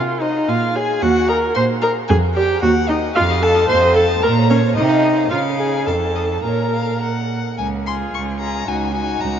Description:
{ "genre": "quick classical-period movement for string quartet", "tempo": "112 BPM", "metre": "2/4", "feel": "rubato", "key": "Bb minor", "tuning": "A4 = 439 Hz", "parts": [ { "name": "warm viola", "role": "accompaniment", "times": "0.0-9.4 s", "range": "Db4 to C5", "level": "-18 LUFS", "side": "equal", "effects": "none" }, { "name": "rich cello", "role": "bass", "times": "0.0-9.4 s", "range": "Db2 to Db3", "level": "-20 LUFS", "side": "right 3 dB", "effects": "none" }, { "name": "clear violin", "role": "melody", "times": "0.2-9.4 s", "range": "Bb4 to Db6", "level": "-28 LUFS", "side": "left 7 dB", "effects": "none" }, { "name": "rich violin", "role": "second line", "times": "0.2-9.4 s", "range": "Gb4 to C6", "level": "-24 LUFS", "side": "left 4 dB", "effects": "none" } ], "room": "wet cathedral reverb, RT60 6.2 s", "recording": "in a vast, echoing space, nothing above 7.5 kHz", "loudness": "-15 LUFS", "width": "side -8 dB against mid", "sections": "0.0-7.6 A section; 7.6-9.4 B section", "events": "none", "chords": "0.5 Bbm; 1.0 Eb5; 2.1 Dm/F; 2.6 Ebm; 3.2 F7; 4.2 Bbm; 4.8 F5/C; 5.3 Db; 5.9 F; 6.4 Bbm; 7.6 Db; 8.7 Ebm7/Db" }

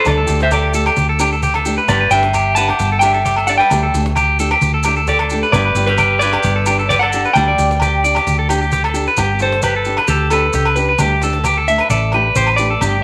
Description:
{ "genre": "highlife guitar band", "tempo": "132 BPM", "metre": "4/4", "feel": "straight", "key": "G major", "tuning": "A4 = 439 Hz", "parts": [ { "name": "clean electric guitar", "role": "melody", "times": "0.0-13.0 s", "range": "G4 to A5", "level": "-19 LUFS", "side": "equal", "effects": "spring reverb" }, { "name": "electric guitar at the edge of break-up", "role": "arpeggios", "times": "0.0-13.0 s", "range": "G4 to D5", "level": "-20 LUFS", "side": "equal", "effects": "slapback echo" }, { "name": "flamenco guitar", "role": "accompaniment", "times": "0.1-13.0 s", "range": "G3 to G4", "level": "-27 LUFS", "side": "equal", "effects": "none" }, { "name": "hollow-body short-scale fingered electric bass", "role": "bass", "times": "0.1-13.0 s", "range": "G1 to D2", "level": "-21 LUFS", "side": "equal", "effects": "none" }, { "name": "cajon", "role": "drums", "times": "0.1-12.9 s", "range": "none", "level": "-29 LUFS", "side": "equal", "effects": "none" }, { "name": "agogo bells", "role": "percussion", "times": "0.1-12.9 s", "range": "none", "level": "-28 LUFS", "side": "equal", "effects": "none" }, { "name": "maracas", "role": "percussion", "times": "0.1-12.9 s", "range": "none", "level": "-32 LUFS", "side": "equal", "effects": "none" } ], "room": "light reverb, small room ambience", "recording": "none", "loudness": "-15 LUFS", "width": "mono", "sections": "0.0-9.2 A section; 9.2-13.0 B section", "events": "clean electric guitar solo 9.2-13.0", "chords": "0.1 Dsus4; 1.9 G; 3.7 Dsus4; 5.5 G; 7.4 Dsus4; 9.2 G; 11.0 Dsus4" }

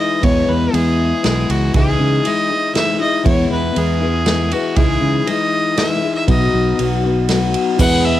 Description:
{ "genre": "folk rock and heartland rock", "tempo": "119 BPM", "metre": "3/4", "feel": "straight", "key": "E major", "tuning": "A4 = 441 Hz", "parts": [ { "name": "bright fiddle", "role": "melody", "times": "0.0-8.2 s", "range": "F#4 to F#5", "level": "-20 LUFS", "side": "equal", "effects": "cassette tape" }, { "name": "picked steel-string acoustic guitar", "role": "accompaniment", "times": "0.0-8.2 s", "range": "E2 to F#4", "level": "-18 LUFS", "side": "left 5 dB", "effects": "none" }, { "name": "fingered electric bass", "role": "bass", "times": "0.2-8.2 s", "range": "B1 to C#3", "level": "-18 LUFS", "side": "right 2 dB", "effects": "none" }, { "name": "natural country drum kit", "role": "drums", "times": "0.2-7.9 s", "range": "crash cymbal, kick drum, ride cymbal, snare drum", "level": "-20 LUFS", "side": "right 2 dB", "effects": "cassette tape" }, { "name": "mellow reed electric piano", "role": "accompaniment", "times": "7.8-8.2 s", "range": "E4 to B4", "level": "-21 LUFS", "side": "right 9 dB", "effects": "none" }, { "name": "hand-pumped harmonium", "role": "sustained chords", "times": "7.8-8.2 s", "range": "E3 to G#4", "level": "-28 LUFS", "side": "right 8 dB", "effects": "none" }, { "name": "tube shaker", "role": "percussion", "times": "7.8-7.9 s", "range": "none", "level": "-33 LUFS", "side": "right 16 dB", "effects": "none" } ], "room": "light reverb", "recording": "home recording on cassette", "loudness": "-14 LUFS", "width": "side -13 dB against mid", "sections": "0.0-7.8 A section", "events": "none", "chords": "0.2 E; 1.7 C#madd9; 3.3 E; 4.8 C#madd9; 6.3 B" }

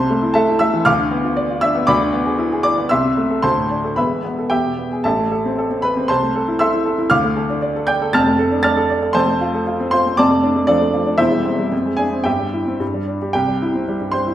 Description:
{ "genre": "classical, virtuoso piano study", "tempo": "117 BPM", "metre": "2/4", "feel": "rubato", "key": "A minor, C major from 9.2 s", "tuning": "A4 = 441 Hz", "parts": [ { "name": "warm baby grand piano", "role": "solo", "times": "0.0-14.3 s", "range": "E1 to A6", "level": "-15 LUFS", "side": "equal", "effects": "none" } ], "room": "wet recital hall reverb, RT60 1.5 s", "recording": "minimal, uncompressed stereo recording", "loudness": "-15 LUFS", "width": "side -12 dB against mid", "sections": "0.0-5.1 A section; 5.1-13.3 B section", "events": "none", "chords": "0.0 Am/C; 0.9 Bdim/D; 1.9 E7/D; 2.9 Am/C; 3.4 D5; 4.0 Esus4; 4.5 E; 5.1 Am; 6.1 Am/C; 7.1 Dm; 8.1 Dm/F; 9.2 F; 10.2 Dm/F; 11.2 C/E; 11.7 Dm7b5/F; 12.3 C/G; 12.8 G5; 13.3 C" }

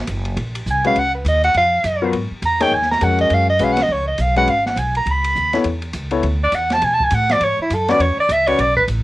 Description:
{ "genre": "modal jazz", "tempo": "205 BPM", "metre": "4/4", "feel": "swing 61% on 8ths", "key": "unclear", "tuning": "A4 = 440 Hz", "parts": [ { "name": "upright bass", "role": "bass", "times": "0.0-9.0 s", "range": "Gb1 to B2", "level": "-22 LUFS", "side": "right 1 dB", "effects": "none" }, { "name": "open jazz drum kit", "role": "drums", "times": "0.1-9.0 s", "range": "hi-hat, kick drum, ride cymbal, snare drum", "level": "-29 LUFS", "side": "equal", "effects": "cassette tape" }, { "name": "mellow soprano saxophone", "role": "melody", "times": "0.7-8.8 s", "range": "E4 to B5", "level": "-16 LUFS", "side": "right 1 dB", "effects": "cassette tape" }, { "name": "warm concert grand piano", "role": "accompaniment", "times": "0.8-8.6 s", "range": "F#3 to D5", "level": "-20 LUFS", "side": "left 5 dB", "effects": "none" } ], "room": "light reverb", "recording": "home recording on cassette", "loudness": "-15 LUFS", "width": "side -17 dB against mid", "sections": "1.0-9.0 A section", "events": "soprano saxophone solo 0.0-9.0", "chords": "0.0 Ab9 (rootless); 1.0 C#13sus4; 5.7 E13sus4" }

